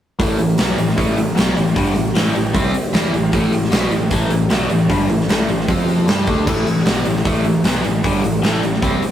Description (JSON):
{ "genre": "hard rock", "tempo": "153 BPM", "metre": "4/4", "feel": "straight", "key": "A dorian", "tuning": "A4 = 440 Hz", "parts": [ { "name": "cranked stack guitar", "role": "riff", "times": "0.2-9.0 s", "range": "G2 to G4", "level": "-20 LUFS", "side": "left 4 dB", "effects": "overdrive, phaser" }, { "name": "sludgy distorted guitar", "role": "riff", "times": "0.2-9.1 s", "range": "G2 to G4", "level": "-21 LUFS", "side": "right 4 dB", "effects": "overdrive" }, { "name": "growling picked electric bass", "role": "bass", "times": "0.2-9.0 s", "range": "G1 to G2", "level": "-23 LUFS", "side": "equal", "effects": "overdrive" }, { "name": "huge arena drum kit", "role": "drums", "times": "0.2-9.1 s", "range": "crash cymbal, hi-hat, kick drum, snare drum", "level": "-18 LUFS", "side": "equal", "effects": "none" } ], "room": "moderate stone room reverb, RT60 1.1 s", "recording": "rough rehearsal-room recording", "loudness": "-14 LUFS", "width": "side -10 dB against mid", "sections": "0.2-9.1 A section", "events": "none", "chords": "0.2 Am; 5.7 F5; 6.1 Am" }